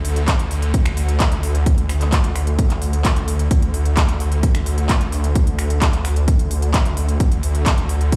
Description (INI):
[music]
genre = EDM, festival progressive house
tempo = 130 BPM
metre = 4/4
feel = straight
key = unclear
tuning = A4 = 439 Hz
[part]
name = detuned saw bass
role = bass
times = 0.0-8.2 s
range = D2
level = -22 LUFS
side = equal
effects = chorus, sidechain pumping
[part]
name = big-room dance drum kit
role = drums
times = 0.0-8.2 s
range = finger snaps, handclaps, hi-hat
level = -27 LUFS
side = equal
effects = none
[part]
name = electronic kick drum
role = drums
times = 0.3-8.2 s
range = none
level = -20 LUFS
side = equal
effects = overdrive
[sound]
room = little or no reverb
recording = played on a big sound system in a bare room, stone room reverb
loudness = -18 LUFS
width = mono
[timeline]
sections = 0.0-8.2 A section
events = none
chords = none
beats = 0.28 0.74 1.20 | 1.66 2.12 2.59 3.05 | 3.51 3.97 4.43 4.89 | 5.36 5.82 6.28 6.74 | 7.20 7.66 8.12